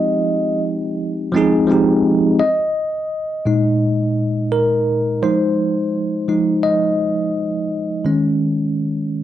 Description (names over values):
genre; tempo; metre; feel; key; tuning
hip hop; 85 BPM; 4/4; swing 60% on 16ths; F minor; A4 = 441 Hz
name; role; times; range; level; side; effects
vibraphone with soft mallets; melody; 0.0-0.6 s; Eb5; -22 LUFS; right 2 dB; plate reverb, analog delay
bell-like tine electric piano; accompaniment; 0.0-9.2 s; Bb2 to Eb5; -16 LUFS; equal; medium stereo tremolo
room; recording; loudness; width
wet studio reverb, RT60 0.5 s; none; -16 LUFS; side -12 dB against mid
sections
0.0-2.4 A section; 2.4-9.2 B section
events
tine electric piano solo 2.4-9.2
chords
0.0 Fm9; 2.4 Bb7sus4; 5.2 Fm7; 8.0 Eb7sus4